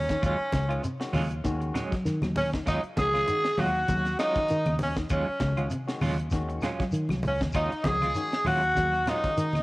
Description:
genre	afrobeat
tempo	98 BPM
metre	4/4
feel	swing 55% on 16ths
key	Eb minor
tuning	A4 = 439 Hz
part	bright tenor saxophone	melody	0.0-9.6 s	Db4 to Ab4	-28 LUFS	equal	cassette tape
part	growling tenor saxophone	second line	0.0-9.6 s	Db4 to Ab4	-32 LUFS	right 1 dB	cassette tape
part	fingered electric bass	bass	0.0-9.6 s	C2 to Eb3	-30 LUFS	equal	none
part	electric guitar at the edge of break-up	arpeggios	0.1-9.6 s	C3 to Gb3	-35 LUFS	left 2 dB	lush chorus, cassette tape
part	clean electric guitar	stabs	0.1-9.3 s	Gb3 to F4	-35 LUFS	right 3 dB	tremolo, cassette tape
part	tight funk drum kit	drums	0.1-9.6 s	hi-hat, kick drum, snare drum	-34 LUFS	equal	cassette tape
part	claves	percussion	0.2-9.6 s	none	-46 LUFS	left 4 dB	none
part	shekere	percussion	0.2-9.5 s	none	-37 LUFS	equal	none
part	barky tine electric piano	accompaniment	0.5-9.5 s	Eb3 to Gb4	-40 LUFS	left 2 dB	overdrive, cassette tape
part	congas	percussion	0.5-9.6 s	none	-34 LUFS	equal	none
room	small room ambience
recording	home recording on cassette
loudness	-24 LUFS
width	side -21 dB against mid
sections	0.0-9.6 A section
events	none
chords	0.0 Ebm11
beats	| 0.23 0.84 1.45 2.06 | 2.67 3.28 3.89 4.50 | 5.11 5.72 6.33 6.94 | 7.55 8.16 8.77 9.38

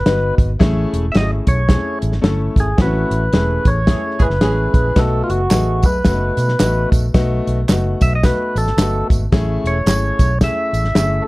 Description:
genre	uptempo 1960s-style soul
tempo	110 BPM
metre	4/4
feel	swing 59% on 8ths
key	unclear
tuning	A4 = 439 Hz
part	percussive tonewheel organ	melody	0.0-11.3 s	E#4 to E5	-21 LUFS	equal	overdrive, plate reverb
part	vintage muted fingered electric bass	bass	0.0-11.2 s	E1 to B2	-18 LUFS	equal	none
part	warm concert grand piano	accompaniment	0.1-11.3 s	A3 to B4	-22 LUFS	left 2 dB	none
part	warm soul drum kit	drums	0.1-11.1 s	hi-hat, kick drum, snare drum	-15 LUFS	equal	none
part	mellow horn section	second line	3.9-4.9 s	E3 to G#4	-25 LUFS	right 2 dB	none
part	handclaps and tambourine	percussion	5.5-11.1 s	none	-30 LUFS	right 4 dB	none
room	little or no reverb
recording	dark, warm production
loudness	-14 LUFS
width	side -20 dB against mid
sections	0.0-11.3 A section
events	band accent 2.8-5.0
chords	0.0 B; 0.6 Amaj7; 5.0 B7; 9.3 Amaj7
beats	0.06 | 0.60 1.15 1.70 2.24 | 2.79 3.33 3.88 4.42 | 4.97 5.51 6.06 6.61 | 7.15 7.70 8.24 8.78 | 9.33 9.87 10.42 10.96

